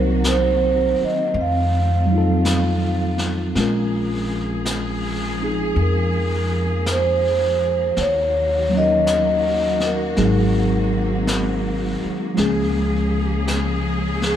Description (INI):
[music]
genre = jazz ballad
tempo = 54 BPM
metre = 4/4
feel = swing 69% on 8ths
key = Bb minor from 3.6 s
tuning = A4 = 441 Hz
[part]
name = vibraphone with soft mallets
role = melody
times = 0.0-14.4 s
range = Ab4 to F5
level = -21 LUFS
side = right 1 dB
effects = none
[part]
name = tine electric piano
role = accompaniment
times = 0.0-14.4 s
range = F3 to Bb4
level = -23 LUFS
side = equal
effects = overdrive, medium stereo tremolo
[part]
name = warm symphonic cello section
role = sustained chords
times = 0.0-14.4 s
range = Db3 to Ab4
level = -26 LUFS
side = equal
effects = none
[part]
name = upright bass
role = bass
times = 0.0-14.4 s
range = Ab1 to F2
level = -23 LUFS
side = left 1 dB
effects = none
[part]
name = jazz brush drum kit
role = drums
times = 0.2-14.4 s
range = brushed snare drum, hi-hat, snare drum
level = -29 LUFS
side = left 1 dB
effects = none
[sound]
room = moderate plate reverb, RT60 3.1 s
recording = heard from further back in the room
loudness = -17 LUFS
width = side -10 dB against mid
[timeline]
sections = 0.0-3.6 A section; 3.6-14.4 B section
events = none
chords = 0.0 Cm7b5; 1.3 F7b9; 3.6 Bbm9; 8.0 Ebm7; 10.2 Ab9; 12.4 Db6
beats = 0.23 1.34 2.44 | 3.55 4.66 5.76 6.86 | 7.96 9.06 10.16 11.26 | 12.37 13.47